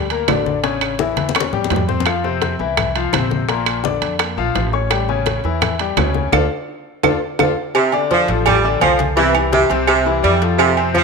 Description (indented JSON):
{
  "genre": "latin, salsa",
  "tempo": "169 BPM",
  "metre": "4/4",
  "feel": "straight",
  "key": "D minor",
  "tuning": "A4 = 440 Hz",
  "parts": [
    { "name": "bright grand piano", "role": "accompaniment", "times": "0.0-11.0 s", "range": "Bb2 to C#6", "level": "-20 LUFS", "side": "left 9 dB", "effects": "none" },
    { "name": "upright bass", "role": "bass", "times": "0.0-11.0 s", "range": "A1 to F2", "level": "-22 LUFS", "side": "right 2 dB", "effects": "none" },
    { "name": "congas", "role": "percussion", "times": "0.1-11.0 s", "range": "none", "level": "-25 LUFS", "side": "left 7 dB", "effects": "none" },
    { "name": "timbales and agogo bells", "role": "percussion", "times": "0.1-10.9 s", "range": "none", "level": "-22 LUFS", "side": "right 14 dB", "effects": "none" },
    { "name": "bongos and cowbell", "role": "percussion", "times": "0.3-11.0 s", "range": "none", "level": "-26 LUFS", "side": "left 11 dB", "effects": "none" },
    { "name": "claves", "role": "percussion", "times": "0.3-10.8 s", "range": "none", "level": "-23 LUFS", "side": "right 15 dB", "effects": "none" },
    { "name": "clear saxophone section", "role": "second line", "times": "7.8-11.0 s", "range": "C3 to G3", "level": "-15 LUFS", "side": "right 3 dB", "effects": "slapback echo" }
  ],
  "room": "moderate echo chamber reverb, RT60 1.5 s, studio reverb",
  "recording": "1960s-style stereo with parts hard left and right",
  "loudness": "-14 LUFS",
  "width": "side -4 dB against mid",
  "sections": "0.0-7.8 A section; 7.8-11.0 B section",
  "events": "drum fill 1.2-2.1, 6.3-7.8; band accent 6.3-7.8",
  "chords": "0.0 Gm (rootless); 0.6 A7; 2.1 F5; 3.5 Bbmaj7; 4.9 A7; 6.3 Dm; 7.8 Dm7; 9.2 C",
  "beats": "0.28 | 0.64 1.00 1.35 1.71 | 2.06 2.42 2.78 3.13 | 3.49 3.84 4.20 4.55 | 4.91 5.27 5.62 5.98 | 6.33 6.68 7.04 7.39 | 7.75 8.10 8.46 8.81 | 9.17 9.52 9.88 10.23 | 10.59 10.95"
}